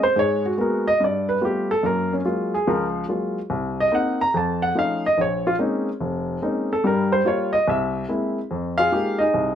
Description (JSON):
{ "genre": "solo jazz", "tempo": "144 BPM", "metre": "4/4", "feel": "swing 67% on 8ths", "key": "F minor", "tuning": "A4 = 438 Hz", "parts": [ { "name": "warm upright piano", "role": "solo", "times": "0.0-9.6 s", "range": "F1 to Bb5", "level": "-20 LUFS", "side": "equal", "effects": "none" } ], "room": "light reverb", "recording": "none", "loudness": "-20 LUFS", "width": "side -9 dB against mid", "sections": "0.0-8.5 A section; 8.5-9.6 B section", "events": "upright piano solo 0.0-8.5", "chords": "0.2 Abm9; 1.0 G9; 1.8 Gbmaj9; 3.5 Cm7b5; 4.3 Faug7; 5.2 Bbm11; 6.8 Gm7b5; 7.7 Caug7; 8.5 Fm11" }